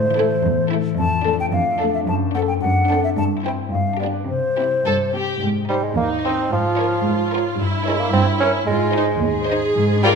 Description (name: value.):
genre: cinematic, playful, whimsical film cue.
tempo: 110 BPM.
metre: 2/4.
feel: straight.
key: C major, Ab major from 5.4 s.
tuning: A4 = 440 Hz.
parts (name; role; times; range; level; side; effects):
mellow hollow silver concert flute; second line; 0.0-5.1 s; C5 to A5; -22 LUFS; left 1 dB; none.
concert harp; arpeggios; 0.0-10.2 s; F2 to Db5; -24 LUFS; left 10 dB; none.
warm studio cello section; bass; 0.0-10.2 s; Eb2 to C3; -24 LUFS; right 4 dB; none.
warm studio violin section; melody; 0.2-10.1 s; G4 to Eb5; -28 LUFS; left 5 dB; none.
rich studio violin section; second line; 0.2-10.1 s; D4 to C5; -26 LUFS; left 2 dB; none.
rich studio viola section; accompaniment; 0.2-10.2 s; A3 to Ab4; -25 LUFS; right 2 dB; none.
warm bassoon; accompaniment; 5.7-10.1 s; F3 to Db4; -21 LUFS; right 4 dB; none.
room: moderate scoring stage reverb, RT60 1.5 s.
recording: minimal, uncompressed stereo recording.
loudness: -17 LUFS.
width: side -5 dB against mid.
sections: 0.0-5.4 A section; 5.4-10.2 B section.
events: none.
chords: 0.0 Am; 1.0 Dm/F; 2.1 D7/F#; 3.2 C/G; 3.7 G7; 4.3 C; 5.4 Ab; 6.5 Bbm7/Ab; 7.6 Gdim7; 8.7 Ab.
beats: 0.45 | 0.99 1.53 | 2.08 2.62 | 3.17 3.73 | 4.29 4.86 | 5.42 5.97 | 6.52 7.07 | 7.61 8.15 | 8.69 9.23 | 9.76.